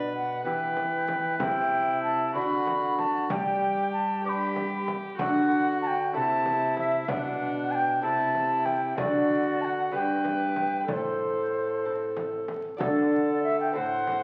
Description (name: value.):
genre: classical, renaissance-style consort dance.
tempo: 63 BPM (dotted quarters).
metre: 6/8.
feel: straight.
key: unclear.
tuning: A4 = 441 Hz.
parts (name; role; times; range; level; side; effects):
wooden flute; melody; 0.0-14.2 s; C5 to D6; -30 LUFS; equal; none.
rich viola; second line; 0.0-14.2 s; D4 to C5; -34 LUFS; equal; none.
lute; accompaniment; 0.0-14.2 s; G2 to B4; -34 LUFS; equal; none.
warm trombone; bass; 0.0-14.2 s; G2 to G3; -38 LUFS; equal; none.
frame drum; percussion; 0.8-14.2 s; none; -40 LUFS; equal; none.
room: wet recital hall reverb, RT60 1.4 s.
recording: very old 78 rpm record, vinyl crackle.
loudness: -27 LUFS.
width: mono.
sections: 0.0-12.8 A section; 12.8-14.2 A section.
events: none.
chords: 0.5 Em; 1.4 C; 2.4 D; 3.3 G; 5.2 D; 6.1 Am/C; 7.1 Bm; 8.0 Am/C; 9.0 D; 9.9 G; 10.9 Am; 12.8 D.